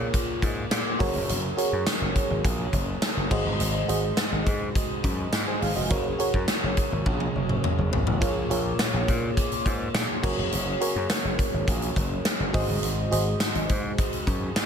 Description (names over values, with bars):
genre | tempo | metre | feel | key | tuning
1980s-style pop | 104 BPM | 4/4 | straight | unclear | A4 = 439 Hz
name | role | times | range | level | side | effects
FM electric piano with soft pad layer | accompaniment | 0.0-14.7 s | Ab2 to Ab5 | -29 LUFS | right 1 dB | chorus
overdriven electric guitar | accompaniment | 0.0-14.7 s | Gb2 to Bb3 | -34 LUFS | left 2 dB | wide subtle chorus
gritty slap bass | bass | 0.0-14.7 s | F1 to Bb2 | -29 LUFS | equal | overdrive
big rock drum kit | drums | 0.1-14.7 s | crash cymbal, hi-hat, kick drum, snare drum, tambourine, toms | -26 LUFS | equal | gated reverb
room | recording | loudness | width
little or no reverb | none | -23 LUFS | side -7 dB against mid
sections
0.0-14.7 A section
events
drum fill 7.1-8.2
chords
0.0 Bbm7; 1.0 Gbadd9; 3.3 Ab7; 5.9 Gbadd9; 8.2 Bbm7; 10.2 Gbadd9; 12.5 Ab7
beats
0.14 0.71 | 1.29 1.87 2.44 3.02 | 3.60 4.18 4.75 5.33 | 5.91 6.48 7.06 7.64 | 8.21 8.79 9.37 9.95 | 10.52 11.10 11.68 12.25 | 12.83 13.41 13.98 14.56